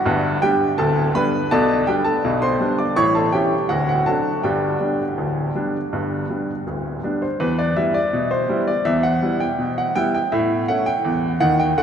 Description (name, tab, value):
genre	ragtime piano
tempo	82 BPM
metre	2/4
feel	straight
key	G major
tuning	A4 = 442 Hz
part	clear baby grand piano	solo	0.0-11.8 s	D1 to D6	-18 LUFS	equal	none
room	wet cathedral reverb, RT60 6.6 s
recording	recorded in a church or concert hall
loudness	-18 LUFS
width	side -8 dB against mid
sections	0.0-7.4 A section; 7.4-11.8 B section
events	none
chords	0.0 G; 1.5 G/B; 3.0 A7; 3.7 D7; 4.4 G; 7.4 Em; 10.3 A